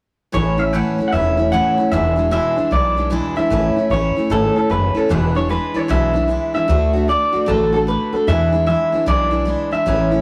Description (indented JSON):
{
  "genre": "rockabilly",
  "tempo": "151 BPM",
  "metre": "4/4",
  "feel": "swing 64% on 8ths",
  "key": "A major",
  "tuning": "A4 = 439 Hz",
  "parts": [
    { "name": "electric guitar through a small old amp", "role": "melody", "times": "0.3-10.2 s", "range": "A4 to F#5", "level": "-21 LUFS", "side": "equal", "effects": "none" },
    { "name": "picked steel-string acoustic guitar", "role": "accompaniment", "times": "0.3-10.2 s", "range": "E2 to F#4", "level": "-22 LUFS", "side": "equal", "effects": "none" },
    { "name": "upright bass", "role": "bass", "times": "0.3-10.2 s", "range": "E1 to E2", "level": "-23 LUFS", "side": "equal", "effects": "none" }
  ],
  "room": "light reverb",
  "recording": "rough rehearsal-room recording",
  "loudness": "-17 LUFS",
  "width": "mono",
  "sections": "0.3-3.5 A section; 3.5-10.2 B section",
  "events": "none",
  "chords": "0.3 A; 1.9 E7; 3.5 A; 5.1 E7; 6.7 D; 8.3 E7",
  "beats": "| 0.33 0.73 1.13 1.52 | 1.92 2.32 2.72 3.11 | 3.51 3.91 4.30 4.70 | 5.10 5.50 5.89 6.29 | 6.69 7.09 7.49 7.88 | 8.28 8.68 9.08 9.47 | 9.87"
}